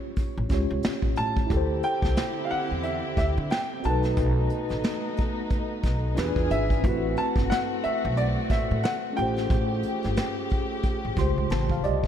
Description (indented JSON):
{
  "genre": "R&B, neo-soul",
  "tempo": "90 BPM",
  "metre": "4/4",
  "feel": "swing 58% on 16ths",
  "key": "A dorian",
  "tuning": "A4 = 439 Hz",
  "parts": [
    { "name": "warm baby grand piano", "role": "melody", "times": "0.0-11.5 s", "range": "C#5 to A5", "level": "-31 LUFS", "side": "equal", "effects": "diffuse ambient delay" },
    { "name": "mellow tine electric piano", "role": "accompaniment", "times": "0.0-12.1 s", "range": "C#3 to B#5", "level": "-30 LUFS", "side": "left 1 dB", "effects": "medium stereo tremolo" },
    { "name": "vintage brush drum kit", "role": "drums", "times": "0.2-12.1 s", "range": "hi-hat, kick drum, snare drum", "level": "-28 LUFS", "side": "equal", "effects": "none" },
    { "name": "upright bass", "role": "bass", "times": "0.4-12.0 s", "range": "G1 to D3", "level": "-28 LUFS", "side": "equal", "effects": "none" },
    { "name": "dark studio string section", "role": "sustained chords", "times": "1.5-12.1 s", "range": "C#3 to G#4", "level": "-33 LUFS", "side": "equal", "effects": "none" }
  ],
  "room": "moderate church reverb, RT60 3.1 s",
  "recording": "dreamy mix soaked in reverb",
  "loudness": "-23 LUFS",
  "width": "side -9 dB against mid",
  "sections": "0.0-12.1 A section",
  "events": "tine electric piano fill 10.8-12.1",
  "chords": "0.0 Aaug7; 1.5 D9sus4; 3.8 B7; 6.2 E7b9; 6.8 Am69; 9.2 A7alt"
}